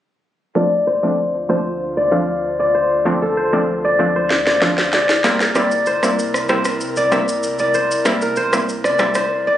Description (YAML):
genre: afrobeats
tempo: 96 BPM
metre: 4/4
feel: straight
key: D minor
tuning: A4 = 440 Hz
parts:
  - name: analog pluck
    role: accompaniment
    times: 0.6-9.3 s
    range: F3 to E4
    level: -20 LUFS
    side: equal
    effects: chorus, low-pass filter
  - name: airy breathy pad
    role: sustained chords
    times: 0.8-9.6 s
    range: C2 to C5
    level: -25 LUFS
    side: equal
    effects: chorus, low-pass filter
  - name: kora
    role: riff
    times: 0.6-9.6 s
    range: A4 to F5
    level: -18 LUFS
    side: left 1 dB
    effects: low-pass filter, tape echo
  - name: electronic snare drum, shaker and rim click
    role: drums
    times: 4.3-9.3 s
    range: none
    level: -20 LUFS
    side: equal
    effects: none
room: light reverb, digital ambience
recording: recorded on a phone in the room, studio reverb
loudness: -15 LUFS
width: side -11 dB against mid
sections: 0.6-9.6 A section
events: filter sweep 0.6-9.6; drum fill 4.3-5.6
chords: 0.6 Dm7; 5.2 C7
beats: | 0.56 1.18 1.80 2.43 | 3.06 3.68 4.30 4.93 | 5.55 6.18 6.80 7.43 | 8.05 8.68 9.30